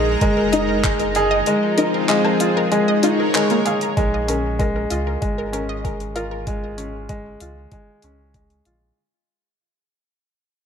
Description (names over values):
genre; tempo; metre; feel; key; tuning
piano and strings electronica; 96 BPM; 4/4; straight; unclear; A4 = 440 Hz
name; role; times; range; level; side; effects
lush unison pad; sustained chords; 0.0-4.0 s; F3 to Bb5; -23 LUFS; left 1 dB; chorus, sidechain pumping
warm upright piano; riff; 0.0-9.0 s; Ab3 to Ab4; -20 LUFS; equal; ping-pong delay
warm sub bass; bass; 0.0-8.9 s; Gb1 to Db2; -28 LUFS; equal; sidechain pumping
wide unison pluck; arpeggios; 0.2-6.4 s; Bb3 to Bb5; -26 LUFS; equal; vintage 12-bit sampler grit, sidechain pumping, ping-pong delay
deep house drum kit; drums; 0.2-8.8 s; handclaps, hi-hat, woodblock; -26 LUFS; left 1 dB; overdrive
electronic kick drum; drums; 0.2-8.5 s; none; -23 LUFS; equal; none
room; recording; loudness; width
light reverb, digital ambience; none; -17 LUFS; side -7 dB against mid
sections
0.0-4.0 A section; 4.0-9.0 B section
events
drop 0.0-4.0; fade-out 4.0-9.0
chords
0.0 Absus2; 1.5 Fm7; 2.7 Absus4